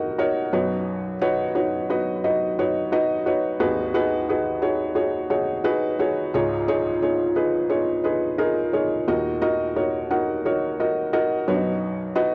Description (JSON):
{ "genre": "pop", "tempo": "88 BPM", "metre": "4/4", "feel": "straight", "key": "unclear", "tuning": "A4 = 443 Hz", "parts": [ { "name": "felt-muted upright piano", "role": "solo", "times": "0.0-12.3 s", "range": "Ab1 to Gb5", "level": "-23 LUFS", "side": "equal", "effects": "cassette tape, tape echo" } ], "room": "light reverb, studio reverb", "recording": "home recording on cassette", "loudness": "-23 LUFS", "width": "mono", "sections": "0.0-12.3 A section", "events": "none", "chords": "0.0 Ebm; 0.5 Badd9; 3.6 Abm7; 6.3 Dbadd9; 9.1 Ebm; 11.5 Badd9", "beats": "0.17 | 0.86 1.54 2.23 2.91 | 3.60 4.28 4.96 5.65 | 6.33 7.02 7.70 8.39 | 9.07 9.76 10.44 11.13 | 11.81" }